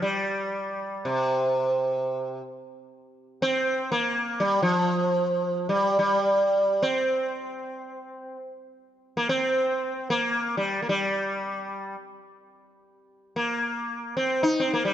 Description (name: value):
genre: indian classical, Hindustani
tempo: free time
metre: none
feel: none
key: unclear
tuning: A4 = 439 Hz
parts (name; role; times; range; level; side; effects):
- sitar; solo; 0.0-14.9 s; C3 to Eb4; -24 LUFS; equal; none
room: moderate scoring stage reverb, RT60 2.1 s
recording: nothing above 7.9 kHz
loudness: -23 LUFS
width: side -11 dB against mid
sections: 0.0-12.9 A section; 12.9-14.9 A section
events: none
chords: none